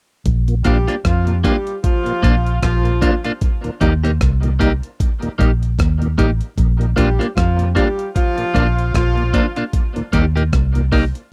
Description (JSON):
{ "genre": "roots reggae", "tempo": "76 BPM", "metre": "4/4", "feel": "swing 57% on 16ths", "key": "Bb major", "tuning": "A4 = 441 Hz", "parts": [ { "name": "vintage muted fingered electric bass", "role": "bass", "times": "0.3-11.1 s", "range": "A1 to F2", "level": "-19 LUFS", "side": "equal", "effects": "none" }, { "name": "breakbeat sampler-style drum kit", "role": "drums", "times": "0.3-11.3 s", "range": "hi-hat, kick drum, rim click", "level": "-21 LUFS", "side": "equal", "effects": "none" }, { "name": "tonewheel organ", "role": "accompaniment", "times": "0.5-11.0 s", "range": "Eb2 to Eb4", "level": "-28 LUFS", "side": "equal", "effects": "overdrive, chorus vibrato, slow rotary speaker, tape echo" }, { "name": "warm horn section", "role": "second line", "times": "0.6-9.5 s", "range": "F3 to G4", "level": "-25 LUFS", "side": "equal", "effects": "tape echo" }, { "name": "electric guitar at the edge of break-up", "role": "accompaniment", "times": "0.6-11.0 s", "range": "Bb3 to G4", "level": "-24 LUFS", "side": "equal", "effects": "tape echo" } ], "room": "little or no reverb", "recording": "dry, close 1970s-style studio recording", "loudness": "-17 LUFS", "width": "mono", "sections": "0.3-11.3 A section", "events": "none", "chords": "0.3 Bb; 3.4 Eb; 6.6 Bb; 9.7 Eb" }